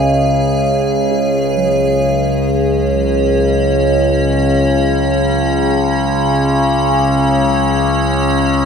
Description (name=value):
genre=dark ambient drone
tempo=free time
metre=none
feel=none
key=unclear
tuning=A4 = 435 Hz
part: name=overtone-sweeping drone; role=drone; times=0.0-8.7 s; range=C#2 to C#3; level=-13 LUFS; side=equal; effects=chorus, built-in reverb
part: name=icy glass pad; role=texture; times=0.0-8.7 s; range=C#4 to G#5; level=-21 LUFS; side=left 1 dB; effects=chorus, built-in reverb
part: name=bronze singing bowl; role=arpeggios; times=1.1-7.0 s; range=F#3 to G#4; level=-23 LUFS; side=right 1 dB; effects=diffuse ambient delay
room=wet cathedral reverb, RT60 5.1 s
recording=in a vast, echoing space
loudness=-12 LUFS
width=side -6 dB against mid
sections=0.0-8.7 A section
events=none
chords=0.0 C#5